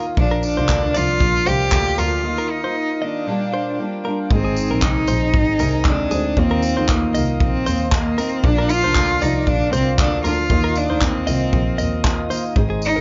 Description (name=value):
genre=acoustic pop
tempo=116 BPM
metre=4/4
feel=swing 55% on 16ths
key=Eb major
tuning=A4 = 442 Hz
part: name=fingerpicked steel-string acoustic guitar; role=accompaniment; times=0.0-13.0 s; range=Ab2 to Ab4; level=-28 LUFS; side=equal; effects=double-tracked
part: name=tonewheel organ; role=sustained chords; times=0.0-13.0 s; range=Bb4 to Eb6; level=-35 LUFS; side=equal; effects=slow rotary speaker
part: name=direct-recorded clean electric guitar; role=arpeggios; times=0.0-13.0 s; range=Ab4 to Eb5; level=-31 LUFS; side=equal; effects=plate reverb, tape echo
part: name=warm cello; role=melody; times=0.2-13.0 s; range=Bb3 to G4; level=-23 LUFS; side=equal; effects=tape echo
part: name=rich double bass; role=bass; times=0.2-13.0 s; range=Ab1 to Eb2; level=-24 LUFS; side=equal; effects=none
part: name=loose indie drum kit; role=drums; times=0.2-12.9 s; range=handclaps, kick drum, tambourine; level=-23 LUFS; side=equal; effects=none
room=light reverb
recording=nothing above 7.5 kHz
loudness=-19 LUFS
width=mono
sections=0.0-4.3 A section; 4.3-13.0 A section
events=break 2.2-4.3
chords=0.2 Bb; 2.2 Ebsus2; 3.3 Bb6; 4.3 Ab; 6.4 Ebsus2; 8.4 Bb; 10.5 Ebsus2